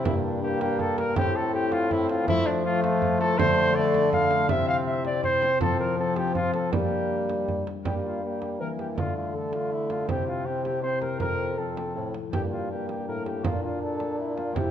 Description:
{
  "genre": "classical, renaissance-style consort dance",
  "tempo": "162 BPM",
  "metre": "3/4",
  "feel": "straight",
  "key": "G dorian",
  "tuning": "A4 = 440 Hz",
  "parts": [
    { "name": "dark cornet", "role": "melody", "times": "0.0-14.7 s", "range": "D4 to F5", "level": "-28 LUFS", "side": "left 1 dB", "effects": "none" },
    { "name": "concert harp", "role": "accompaniment", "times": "0.0-14.7 s", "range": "F2 to G4", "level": "-32 LUFS", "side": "left 8 dB", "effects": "none" },
    { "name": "warm trombone", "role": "accompaniment", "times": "0.0-14.7 s", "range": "A3 to E4", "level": "-32 LUFS", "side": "right 1 dB", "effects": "none" },
    { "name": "mellow bassoon", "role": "bass", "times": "0.0-14.7 s", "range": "F2 to G3", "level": "-30 LUFS", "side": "right 2 dB", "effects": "none" },
    { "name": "frame drum", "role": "percussion", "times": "0.1-14.7 s", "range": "none", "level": "-32 LUFS", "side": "right 4 dB", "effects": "none" }
  ],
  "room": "moderate recital hall reverb, RT60 1.4 s",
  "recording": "none",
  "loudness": "-23 LUFS",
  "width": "side -9 dB against mid",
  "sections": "0.0-7.9 A section; 7.9-14.7 B section",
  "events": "none",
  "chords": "0.1 Gm; 1.2 Am; 2.3 F; 3.4 Dm; 4.5 C; 5.6 F5; 6.7 Gm; 9.0 D5; 10.1 C; 11.2 F; 12.3 Gm; 13.4 Bb",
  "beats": "| 0.05 0.42 0.80 | 1.17 1.54 1.91 | 2.28 2.65 3.02 | 3.39 3.76 4.13 | 4.50 4.87 5.24 | 5.61 5.98 6.35 | 6.73 7.11 7.49 | 7.86 8.23 8.61 | 8.98 9.35 9.72 | 10.09 10.46 10.83 | 11.21 11.58 11.96 | 12.33 12.70 13.07 | 13.45 13.82 14.19 | 14.56"
}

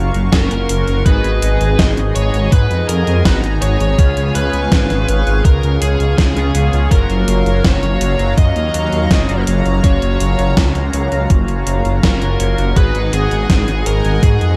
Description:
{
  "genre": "synthwave",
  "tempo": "82 BPM",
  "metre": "4/4",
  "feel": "straight",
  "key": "F# major",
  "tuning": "A4 = 440 Hz",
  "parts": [
    { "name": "chorused pulse-width pad", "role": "sustained chords", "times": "0.0-14.6 s", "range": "F#3 to C#6", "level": "-25 LUFS", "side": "equal", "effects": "sidechain pumping" },
    { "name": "chorused polysynth", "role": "stabs", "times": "0.0-14.6 s", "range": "G#2 to A#5", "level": "-26 LUFS", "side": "equal", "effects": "digital delay" },
    { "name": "detuned saw bass", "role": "bass", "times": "0.0-14.6 s", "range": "F#1 to G#2", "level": "-18 LUFS", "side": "equal", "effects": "chorus" },
    { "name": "gated 80s digital drum machine", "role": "drums", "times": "0.1-14.6 s", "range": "hi-hat, snare drum", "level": "-22 LUFS", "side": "equal", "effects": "gated reverb, gated reverb snare, overdrive" },
    { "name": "biting lead guitar", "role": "melody", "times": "0.3-14.6 s", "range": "G#4 to D#5", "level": "-24 LUFS", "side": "equal", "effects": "overdrive, tape echo" },
    { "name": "electronic kick drum", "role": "drums", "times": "0.3-14.4 s", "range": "none", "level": "-15 LUFS", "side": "equal", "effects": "overdrive" }
  ],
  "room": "little or no reverb",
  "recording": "dark, warm production",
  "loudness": "-15 LUFS",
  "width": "mono",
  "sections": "0.0-14.6 A section",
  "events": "none",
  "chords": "0.0 F#maj7; 1.1 G#m7; 4.0 C#7; 6.9 F#maj7; 12.8 G#m7",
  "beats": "0.33 | 1.06 1.79 2.52 3.25 | 3.98 4.72 5.45 6.18 | 6.91 7.64 8.38 9.11 | 9.84 10.57 11.30 12.03 | 12.77 13.50 14.23"
}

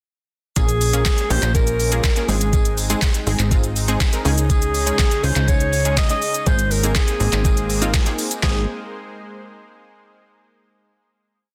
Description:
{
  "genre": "dance-pop",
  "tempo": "122 BPM",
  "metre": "4/4",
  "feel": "straight",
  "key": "Ab major",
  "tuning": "A4 = 440 Hz",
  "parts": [
    { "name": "breathy alto saxophone", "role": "melody", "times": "0.6-8.7 s", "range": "Ab4 to Eb5", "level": "-26 LUFS", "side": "equal", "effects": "dub echo" },
    { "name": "analog pluck", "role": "accompaniment", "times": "0.6-8.7 s", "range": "Ab3 to Bb4", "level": "-29 LUFS", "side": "equal", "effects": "chorus, sidechain pumping" },
    { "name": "lush unison pad", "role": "sustained chords", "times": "0.6-8.7 s", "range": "Db3 to C5", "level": "-35 LUFS", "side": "equal", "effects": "chorus, sidechain pumping" },
    { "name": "plucky analog bass", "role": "bass", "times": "0.6-8.7 s", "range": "Ab1 to Db2", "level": "-23 LUFS", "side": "equal", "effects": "sidechain pumping" },
    { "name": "smooth R&B drum kit", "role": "drums", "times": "0.6-8.5 s", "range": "handclaps, hi-hat, kick drum, shaker, snare drum", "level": "-22 LUFS", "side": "equal", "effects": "none" },
    { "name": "tambourine", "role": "percussion", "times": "0.6-8.7 s", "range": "none", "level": "-40 LUFS", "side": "equal", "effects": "none" }
  ],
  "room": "light reverb, digital ambience",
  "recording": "dense, heavily limited modern master",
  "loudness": "-19 LUFS",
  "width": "mono",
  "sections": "0.6-8.4 chorus; 8.4-10.4 final chord",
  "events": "none",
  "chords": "0.6 Bbm7; 2.3 Ab; 4.3 Dbsus2; 6.5 Abadd9",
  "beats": "| 0.56 1.05 1.55 2.04 | 2.53 3.02 3.51 4.01 | 4.50 4.99 5.48 5.97 | 6.46 6.96 7.45 7.94 | 8.43"
}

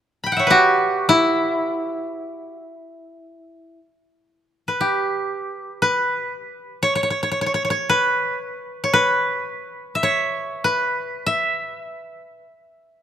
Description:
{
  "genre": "japanese traditional, Japanese chamber music",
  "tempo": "free time",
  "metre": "none",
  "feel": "none",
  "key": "E kumoi",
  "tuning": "A4 = 440 Hz",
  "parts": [
    { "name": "koto", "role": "solo", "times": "0.2-13.0 s", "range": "E4 to B5", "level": "-18 LUFS", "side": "equal", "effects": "none" }
  ],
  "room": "light reverb",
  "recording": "close, detailed microphones",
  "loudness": "-18 LUFS",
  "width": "side -9 dB against mid",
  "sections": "0.0-4.0 A section; 4.0-13.0 A section",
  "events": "none",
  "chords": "none",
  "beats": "free time"
}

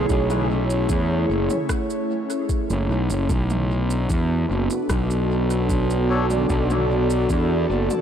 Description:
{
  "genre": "ambient dub",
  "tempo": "75 BPM",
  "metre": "4/4",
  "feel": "straight",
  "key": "B dorian",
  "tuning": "A4 = 440 Hz",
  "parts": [
    { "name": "airy breathy pad", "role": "sustained chords", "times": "0.0-8.0 s", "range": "A3 to D5", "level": "-23 LUFS", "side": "equal", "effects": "chorus" },
    { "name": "soft synth bell", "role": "arpeggios", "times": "0.0-3.4 s", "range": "G#4 to F#5", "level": "-31 LUFS", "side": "right 4 dB", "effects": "chorus, tape echo" },
    { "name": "fuzz fingered electric bass", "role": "bass", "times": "0.0-7.9 s", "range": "F#1 to E2", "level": "-22 LUFS", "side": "equal", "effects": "overdrive, tube saturation" },
    { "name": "electronic kick drum", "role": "drums", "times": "0.1-7.5 s", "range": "none", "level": "-25 LUFS", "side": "equal", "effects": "overdrive, small room ambience" },
    { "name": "organic electronic drum kit", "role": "drums", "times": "0.1-8.0 s", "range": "rim click, shaker, toms", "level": "-33 LUFS", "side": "right 1 dB", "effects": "overdrive, small room ambience, dub echo" },
    { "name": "melodica", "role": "stabs", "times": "6.1-6.3 s", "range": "D4 to C#5", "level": "-32 LUFS", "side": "left 3 dB", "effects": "dub echo" }
  ],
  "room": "light reverb",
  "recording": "none",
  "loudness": "-19 LUFS",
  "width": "side -8 dB against mid",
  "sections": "0.0-8.0 A section",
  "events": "none",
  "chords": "0.0 Amaj7; 3.3 Bm7",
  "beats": "| 0.09 0.89 1.69 2.49 | 3.29 4.09 4.89 5.69 | 6.49 7.29"
}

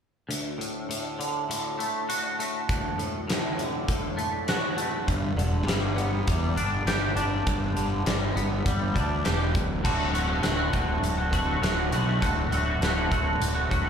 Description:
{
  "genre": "quiet-loud alternative rock",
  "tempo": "101 BPM",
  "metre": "4/4",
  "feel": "straight",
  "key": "D major",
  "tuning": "A4 = 439 Hz",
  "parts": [
    { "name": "twangy electric guitar", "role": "arpeggios", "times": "0.3-13.9 s", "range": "D2 to G4", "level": "-28 LUFS", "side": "equal", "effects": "ensemble chorus, analog delay, slapback echo" },
    { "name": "huge arena drum kit", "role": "drums", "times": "0.3-13.9 s", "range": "crash cymbal, hi-hat, kick drum, snare drum", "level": "-29 LUFS", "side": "equal", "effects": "none" },
    { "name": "fuzz fingered electric bass", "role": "bass", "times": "5.1-13.9 s", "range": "D1 to E2", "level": "-28 LUFS", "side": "equal", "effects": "overdrive" }
  ],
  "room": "light reverb",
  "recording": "live gig heard through the venue's PA, club reverb",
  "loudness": "-24 LUFS",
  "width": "side -7 dB against mid",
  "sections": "0.3-9.8 A section; 9.8-13.9 B section",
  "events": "none",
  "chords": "0.3 D; 5.1 G; 9.5 N.C.; 9.8 D",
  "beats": "| 0.30 0.90 1.49 2.09 | 2.69 3.29 3.88 4.48 | 5.07 5.67 6.27 6.86 | 7.46 8.05 8.65 9.24 | 9.84 10.44 11.03 11.63 | 12.22 12.82 13.41"
}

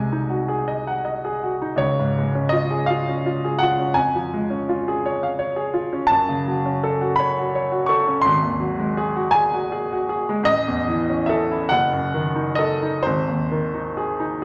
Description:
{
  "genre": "classical, romantic nocturne for solo piano",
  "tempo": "42-58 BPM (dotted quarters)",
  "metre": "6/8",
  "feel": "rubato",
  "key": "Db major",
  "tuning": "A4 = 442 Hz",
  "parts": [
    { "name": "clear grand piano", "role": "solo", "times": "0.0-14.4 s", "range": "F#1 to C#6", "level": "-22 LUFS", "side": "equal", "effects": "none" }
  ],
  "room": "wet recital hall reverb, RT60 1.3 s",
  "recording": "none",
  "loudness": "-22 LUFS",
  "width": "mono",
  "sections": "0.0-14.4 A section",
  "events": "none",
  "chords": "0.0 Ab7/C; 1.8 Db; 4.0 Db/F; 6.1 F#m; 8.2 G#7; 10.5 A; 11.7 D#dim/F#; 13.0 G#",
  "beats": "0.69 | 1.81 2.89 | 3.96 5.03 | 6.09 7.17 | 8.24 9.33 | 10.47 11.69 | 13.04 14.41"
}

